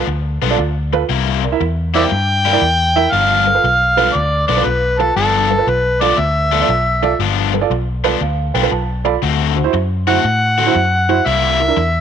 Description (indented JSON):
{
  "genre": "electric blues shuffle",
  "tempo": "118 BPM",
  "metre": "4/4",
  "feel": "swing 67% on 8ths",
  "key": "G mixolydian",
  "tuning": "A4 = 440 Hz",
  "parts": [
    { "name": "cranked stack guitar", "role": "riff", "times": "0.0-11.8 s", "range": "G2 to F#4", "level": "-21 LUFS", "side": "left 17 dB", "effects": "overdrive, spring reverb" },
    { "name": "vintage muted fingered electric bass", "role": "bass", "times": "0.1-12.0 s", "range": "G1 to A2", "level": "-19 LUFS", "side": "left 1 dB", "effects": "none" },
    { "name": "warm upright piano", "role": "accompaniment", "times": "0.4-11.8 s", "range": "D4 to B5", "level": "-20 LUFS", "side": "right 12 dB", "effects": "none" },
    { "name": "overdriven harmonica", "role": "melody", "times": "2.0-12.0 s", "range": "A4 to G5", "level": "-15 LUFS", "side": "left 1 dB", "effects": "none" }
  ],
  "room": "small room reverb",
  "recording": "1960s-style stereo with parts hard left and right",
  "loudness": "-13 LUFS",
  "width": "side -8 dB against mid",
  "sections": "0.0-12.0 A section",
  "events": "upright piano fill 7.7-9.2",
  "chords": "0.0 G7; 1.1 C7; 3.1 G7; 9.2 D7; 11.3 C7",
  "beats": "0.08 0.59 | 1.09 1.60 2.11 2.62 | 3.13 3.64 4.15 4.66 | 5.16 5.67 6.18 6.69 | 7.20 7.70 8.21 8.72 | 9.23 9.73 10.24 10.75 | 11.26 11.77"
}